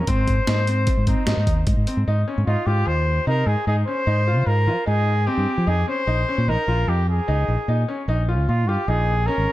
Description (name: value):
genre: progressive instrumental, band music in an uneven meter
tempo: 150 BPM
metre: 5/4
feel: straight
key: unclear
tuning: A4 = 440 Hz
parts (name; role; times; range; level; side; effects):
- warm trumpet; melody; 0.0-9.5 s; Eb4 to C5; -25 LUFS; equal; tape echo
- fingered electric bass; bass; 0.0-9.5 s; Ab1 to F3; -20 LUFS; equal; none
- bright concert grand piano; arpeggios; 0.1-9.5 s; C4 to F4; -28 LUFS; left 1 dB; tape echo
- boom bap sampler-style drum kit; drums; 0.1-2.0 s; hi-hat, kick drum, snare drum; -22 LUFS; equal; none
room: light reverb, digital ambience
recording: none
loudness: -18 LUFS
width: side -16 dB against mid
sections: 0.0-2.1 A section; 2.1-9.5 B section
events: none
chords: 0.1 Ab; 6.1 Bbm7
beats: | 0.07 0.47 0.87 1.27 1.67 | 2.07 2.47 2.87 3.27 3.67 | 4.07 4.47 4.87 5.27 5.67 | 6.07 6.47 6.88 7.28 7.68 | 8.08 8.48 8.88 9.28